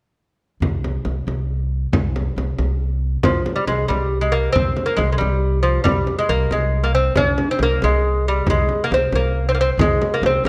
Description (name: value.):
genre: Persian modal ensemble.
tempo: 92 BPM (dotted quarters).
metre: 6/8.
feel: straight.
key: C dastgah homayun.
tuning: A4 = 440 Hz.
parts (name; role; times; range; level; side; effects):
upright bass; bass; 0.6-10.5 s; C2; -23 LUFS; equal; none.
frame drum; percussion; 0.6-10.5 s; none; -25 LUFS; equal; none.
lute; melody; 3.2-10.5 s; F3 to Db4+45c; -21 LUFS; equal; none.
room: moderate recital hall reverb, RT60 1.4 s.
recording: dark, warm production.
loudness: -19 LUFS.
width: mono.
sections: 0.6-3.2 A section; 3.2-10.5 B section.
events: none.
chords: none.